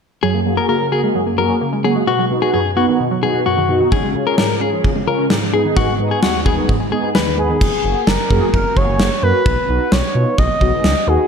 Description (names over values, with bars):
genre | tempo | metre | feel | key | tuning
synth-pop | 130 BPM | 4/4 | straight | F# major | A4 = 440 Hz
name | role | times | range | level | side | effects
clean electric guitar | second line | 0.2-7.5 s | F#4 to B4 | -20 LUFS | left 6 dB | analog delay
mellow synth brass | accompaniment | 0.2-11.3 s | D#2 to A#4 | -19 LUFS | right 1 dB | chorus, phaser, low-pass filter
analog pluck | arpeggios | 0.2-7.6 s | G#2 to F#4 | -23 LUFS | right 3 dB | chorus, low-pass filter, analog delay
gated 80s drum kit | drums | 3.9-10.9 s | crash cymbal, kick drum, snare drum | -17 LUFS | equal | none
expressive portamento lead | melody | 7.4-11.3 s | G#4 to D#5 | -18 LUFS | equal | chorus, analog delay
smooth synth bass | bass | 7.6-11.2 s | F#1 to B2 | -19 LUFS | equal | none
room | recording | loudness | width
moderate scoring stage reverb, RT60 1.5 s, small room ambience | dark, warm production | -14 LUFS | side -6 dB against mid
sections
0.2-7.6 A section; 7.6-11.3 B section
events
filter sweep 0.2-7.6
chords
0.2 F#add9; 2.1 B; 3.9 C#; 5.5 G#m; 7.6 F#add9; 9.5 B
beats
| 0.23 0.69 1.15 1.61 | 2.07 2.54 3.00 3.46 | 3.92 4.38 4.84 5.30 | 5.77 6.23 6.69 7.15 | 7.61 8.07 8.54 9.00 | 9.46 9.92 10.38 10.84